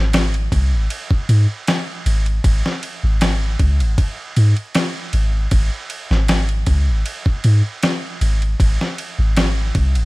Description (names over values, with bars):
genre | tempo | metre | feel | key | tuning
trip hop | 78 BPM | 4/4 | straight | unclear | A4 = 442 Hz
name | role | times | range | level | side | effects
soft 808-style bass | bass | 0.0-10.1 s | G#1 to G#2 | -16 LUFS | equal | none
dusty soul sampler-style drum kit | drums | 0.1-10.1 s | kick drum, ride cymbal, snare drum | -20 LUFS | equal | none
room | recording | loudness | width
little or no reverb | vinyl crackle | -16 LUFS | side -22 dB against mid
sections
0.0-10.1 A section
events
none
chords
none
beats
0.13 0.90 1.67 | 2.44 3.21 3.98 4.75 | 5.51 6.28 7.05 7.82 | 8.59 9.36